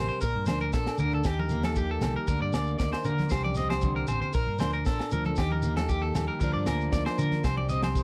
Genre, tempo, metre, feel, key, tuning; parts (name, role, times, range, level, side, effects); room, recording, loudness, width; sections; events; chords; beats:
highlife guitar band; 116 BPM; 4/4; straight; Bb major; A4 = 440 Hz
picked plugged-in steel-string acoustic guitar; accompaniment; 0.0-8.0 s; Bb2 to Bb4; -35 LUFS; equal
electric guitar at the edge of break-up; arpeggios; 0.0-8.0 s; G4 to Eb5; -35 LUFS; equal; harmonic tremolo
fingered electric bass; bass; 0.0-8.0 s; A1 to D3; -33 LUFS; equal
tight funk drum kit; drums; 0.2-8.0 s; kick drum, snare drum; -33 LUFS; equal
shekere; percussion; 0.2-8.0 s; -42 LUFS; equal
agogo bells; percussion; 0.5-8.0 s; -44 LUFS; equal
congas; percussion; 0.5-7.9 s; -38 LUFS; equal
studio ambience; dry, close 1970s-style studio recording; -28 LUFS; mono
0.0-8.0 A section
drum fill 3.8-4.3
0.2 Bb; 1.3 Eb; 2.3 Bb/D; 3.3 Cm; 4.3 Bb; 5.4 Eb; 6.4 Bb/D; 7.4 Cm
| 0.22 0.74 1.25 1.77 | 2.28 2.80 3.31 3.83 | 4.34 4.86 5.37 5.89 | 6.40 6.92 7.43 7.95